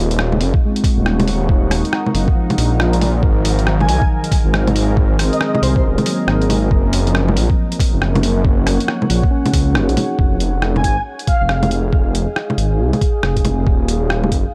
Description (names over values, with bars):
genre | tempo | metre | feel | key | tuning
future garage | 138 BPM | 4/4 | swing 62% on 16ths | F phrygian | A4 = 440 Hz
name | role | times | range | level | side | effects
tine electric piano | accompaniment | 0.0-10.4 s | Eb3 to Ab4 | -25 LUFS | equal | sidechain pumping, analog delay
deep dark ambient pad | sustained chords | 0.0-14.5 s | Ab3 to Db6 | -28 LUFS | equal | chorus, built-in reverb, sidechain pumping
swelling detuned saw bass | bass | 0.0-14.4 s | Eb1 to Db2 | -19 LUFS | equal | sidechain pumping
lo-fi sampler-style drum kit | drums | 0.1-14.4 s | bongos, hi-hat, rim click | -23 LUFS | equal | none
electronic kick drum | drums | 0.5-14.4 s | none | -18 LUFS | equal | none
breathy flute-like synth lead | melody | 3.8-5.8, 10.8-11.7 s | C5 to Ab5 | -27 LUFS | equal | ensemble chorus, analog delay
room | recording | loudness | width
digital ambience | none | -16 LUFS | mono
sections
0.0-10.2 A section; 10.2-14.5 B section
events
none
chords
0.0 Ebm7; 3.2 Abadd9; 6.7 Gb; 10.2 Fm7; 13.7 Ebm7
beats
0.19 0.62 1.06 | 1.49 1.93 2.36 2.80 | 3.23 3.67 4.10 4.54 | 4.97 5.41 5.84 6.28 | 6.71 7.14 7.58 8.01 | 8.45 8.88 9.32 9.75 | 10.19 10.62 11.06 11.49 | 11.93 12.36 12.80 13.23 | 13.67 14.10 14.54